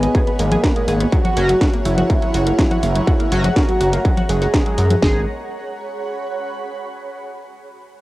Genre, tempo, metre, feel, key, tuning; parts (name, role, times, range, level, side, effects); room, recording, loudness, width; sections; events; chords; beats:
melodic techno; 123 BPM; 4/4; straight; G# minor; A4 = 441 Hz
fat analog lead; melody; 0.0-5.2 s; A#3 to G#4; -21 LUFS; equal; phaser, sidechain pumping, cassette tape, analog delay
dark analog pad; sustained chords; 0.0-5.3 s; B3 to A#5; -30 LUFS; left 1 dB; wide subtle chorus, sidechain pumping, cassette tape
warbly dusty pluck; arpeggios; 0.0-5.3 s; C#3 to G#5; -25 LUFS; equal; chorus, sidechain pumping, cassette tape, analog delay
gritty driven synth bass; bass; 0.0-5.3 s; F#1 to F#2; -19 LUFS; equal; sidechain pumping
techno drum kit; drums; 0.0-5.0 s; congas, hi-hat, rim click, snare drum; -22 LUFS; equal; overdrive, sidechain pumping on hats, studio reverb, cassette tape, sidechain pumping on perc
granular cloud pad; texture; 0.0-6.9 s; G#4 to B5; -28 LUFS; right 1 dB; built-in reverb, sidechain pumping, cassette tape
techno drum kit; drums; 0.1-5.1 s; kick drum, snare drum; -17 LUFS; equal; distortion, overdrive, studio reverb, cassette tape
sync-sweep polysynth; stabs; 1.4-5.2 s; F#3 to G#4; -27 LUFS; equal; lush chorus, sidechain pumping, cassette tape, analog delay
light reverb; home recording on cassette; -15 LUFS; side -17 dB against mid
0.0-5.0 A section; 5.0-7.0 B section
drop 0.0-5.0
0.0 G#madd9; 1.1 F#7; 5.0 G#madd9
0.15 0.64 | 1.12 1.61 2.10 2.59 | 3.07 3.56 4.05 4.54 | 5.03 5.51 6.00 6.49